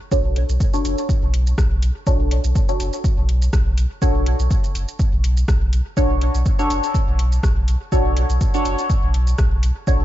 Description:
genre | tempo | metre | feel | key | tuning
dub techno | 123 BPM | 4/4 | swing 54% on 16ths | unclear | A4 = 439 Hz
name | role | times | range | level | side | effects
deep mellow chord stab | stabs | 0.1-10.0 s | D4 to C#5 | -24 LUFS | equal | chorus, phaser, sidechain pumping, dub echo
pure sine sub bass | bass | 0.1-10.0 s | F#1 to B1 | -18 LUFS | equal | sidechain pumping
deep house drum kit | drums | 0.1-10.0 s | hi-hat, rim click, shaker | -32 LUFS | right 1 dB | overdrive, small room ambience
electronic kick drum | drums | 0.1-10.0 s | none | -19 LUFS | equal | small room ambience
room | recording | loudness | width
little or no reverb | dark, warm production, nothing above 7.7 kHz | -16 LUFS | side -14 dB against mid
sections
0.0-10.0 A section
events
none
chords
0.0 Bm7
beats
| 0.12 0.60 1.09 1.58 | 2.07 2.56 3.04 3.53 | 4.02 4.51 5.00 5.48 | 5.97 6.46 6.95 7.43 | 7.92 8.41 8.90 9.38 | 9.87

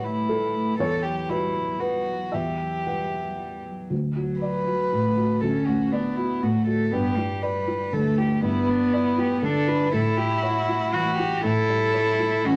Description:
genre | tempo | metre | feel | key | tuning
neoclassical piano and strings | 119 BPM | 3/4 | rubato | unclear | A4 = 440 Hz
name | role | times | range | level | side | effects
warm violin | melody | 0.0-12.6 s | D4 to B4 | -29 LUFS | equal | none
warm cello | second line | 0.0-12.6 s | F#3 to F#4 | -28 LUFS | equal | none
felt-muted upright piano | accompaniment | 0.0-12.6 s | D2 to F#5 | -29 LUFS | equal | none
room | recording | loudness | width
wet studio reverb, RT60 0.7 s | none | -24 LUFS | mono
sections
0.0-3.9 A section; 3.9-12.6 B section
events
none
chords
0.0 A7; 0.8 Emadd9; 3.9 D; 6.9 G6; 9.9 A7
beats
0.29 | 0.80 1.30 1.81 | 2.34 2.87 3.39 | 3.91 4.42 4.92 | 5.43 5.93 6.43 | 6.93 7.43 7.94 | 8.44 8.94 9.44 | 9.94 10.44 10.95 | 11.45 11.96 12.46

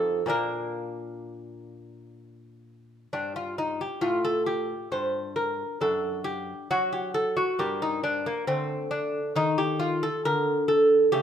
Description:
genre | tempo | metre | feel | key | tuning
classical, baroque-style dance for lute | 63-69 BPM | 3/4 | rubato | Bb major, G minor from 3.1 s | A4 = 440 Hz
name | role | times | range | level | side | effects
lute | solo | 0.0-11.2 s | F2 to C5 | -24 LUFS | equal | none
room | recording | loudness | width
light reverb | minimal, uncompressed stereo recording | -24 LUFS | side -9 dB against mid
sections
0.0-3.1 A section; 3.1-11.2 A section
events
none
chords
0.3 Bb; 3.1 Gm11; 5.8 D/F#; 7.6 Gm; 8.5 D5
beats
| 0.30 1.25 2.19 | 3.13 4.03 4.92 | 5.81 6.70 7.60 | 8.48 9.37 10.26 | 11.13

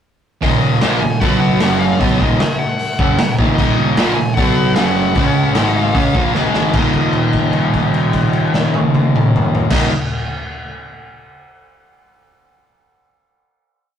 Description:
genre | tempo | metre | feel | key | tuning
punk rock | 151 BPM | 4/4 | straight | Eb minor | A4 = 445 Hz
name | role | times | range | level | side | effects
bluesy overdriven lead guitar | melody | 0.4-9.9 s | Eb5 to Ab5 | -24 LUFS | left 2 dB | distortion
distorted electric guitar | riff | 0.4-9.9 s | Eb2 to Db4 | -19 LUFS | left 5 dB | distortion
overdriven semi-hollow guitar | riff | 0.4-9.9 s | Eb2 to Db4 | -18 LUFS | right 3 dB | none
fuzz picked electric bass | bass | 0.4-9.9 s | Eb1 to Db2 | -27 LUFS | equal | none
raw garage drum kit | drums | 0.4-9.8 s | crash cymbal, hi-hat, kick drum, snare drum, toms | -17 LUFS | equal | none
room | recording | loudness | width
light reverb | rough rehearsal-room recording, tube saturation | -13 LUFS | side -8 dB against mid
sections
0.4-6.7 riff; 6.7-10.0 final chord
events
drum fill 6.3-6.7; held note 6.7-9.7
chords
0.4 Eb5; 1.2 B5; 1.6 Gb5; 2.0 Ebm; 4.4 B5; 4.8 Gb5; 5.2 Db5; 5.6 Ab5; 6.0 Gbmaj9; 6.3 Ab5; 6.7 Eb5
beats
| 0.43 0.83 1.22 1.61 | 2.00 2.40 2.79 3.18 | 3.58 3.97 4.37 4.76 | 5.16 5.55 5.95 6.35 | 6.75 7.15 7.55 7.95 | 8.35 8.75 9.15 9.55

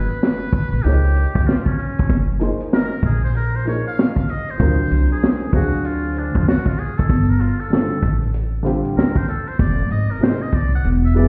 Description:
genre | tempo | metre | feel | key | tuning
hip hop, jazz-hop | 96 BPM | 4/4 | swing 63% on 16ths | unclear | A4 = 439 Hz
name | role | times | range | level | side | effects
trumpet with metal mute | melody | 0.0-11.3 s | Db4 to Gb5 | -30 LUFS | equal | none
upright bass | bass | 0.0-11.2 s | E1 to E#2 | -21 LUFS | equal | none
vintage drum kit | drums | 0.1-11.3 s | hi-hat, kick drum, snare drum | -22 LUFS | equal | none
dark upright piano | accompaniment | 0.8-11.3 s | C3 to E#5 | -26 LUFS | equal | none
room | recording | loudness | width
light reverb, small room reverb | heard muffled through a wall, stone room reverb, EQ | -19 LUFS | mono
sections
0.0-11.3 A section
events
muted trumpet solo 0.0-11.3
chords
0.0 Abmadd9 (rootless); 0.8 Db69; 2.1 Gbmaj9#11; 4.6 D7alt; 7.1 Gsus2; 9.6 Fm7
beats
0.23 0.85 1.48 | 2.10 2.73 3.35 3.98 | 4.60 5.22 5.85 6.47 | 7.10 7.72 8.35 8.97 | 9.60 10.22 10.85

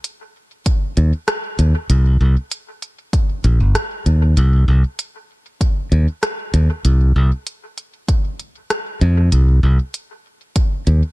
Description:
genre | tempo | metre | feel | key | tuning
ambient dub | 97 BPM | 4/4 | straight | C minor | A4 = 439 Hz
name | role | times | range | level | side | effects
organic electronic drum kit | drums | 0.0-11.0 s | hi-hat, rim click | -24 LUFS | equal | dub echo
electronic kick drum | drums | 0.7-10.7 s | none | -16 LUFS | equal | overdrive
modern bright fingered electric bass | bass | 1.0-11.0 s | G1 to F2 | -12 LUFS | equal | tube saturation
room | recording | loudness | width
little or no reverb | none | -14 LUFS | side -20 dB against mid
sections
0.0-11.1 A section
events
none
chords
none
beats
0.04 0.66 1.28 | 1.90 2.52 3.13 3.75 | 4.37 4.99 5.61 6.23 | 6.85 7.46 8.08 8.70 | 9.32 9.94 10.56

